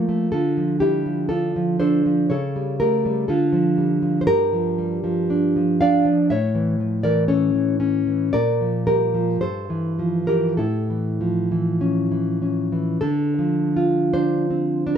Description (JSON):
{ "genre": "romantic piece for solo classical guitar", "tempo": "48-62 BPM", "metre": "2/4", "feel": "rubato", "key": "D minor from 4.3 s", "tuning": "A4 = 439 Hz", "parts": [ { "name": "nylon-string guitar", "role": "solo", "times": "0.0-15.0 s", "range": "G2 to F5", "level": "-18 LUFS", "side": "equal", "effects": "none" } ], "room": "moderate studio reverb, RT60 0.6 s", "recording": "none", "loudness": "-18 LUFS", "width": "side -8 dB against mid", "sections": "0.0-13.0 A section; 13.0-15.0 B section", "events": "none", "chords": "0.3 Dm; 2.3 A7/C#; 3.3 Dm; 4.3 Gm7; 6.3 A; 8.3 Bb; 9.4 G13sus4; 10.6 A; 13.0 Dm", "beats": "| 0.33 1.30 | 2.30 3.28 | 4.27 5.29 | 6.30 7.28 | 8.33 9.41 | 10.58 11.81 | 13.00 14.14" }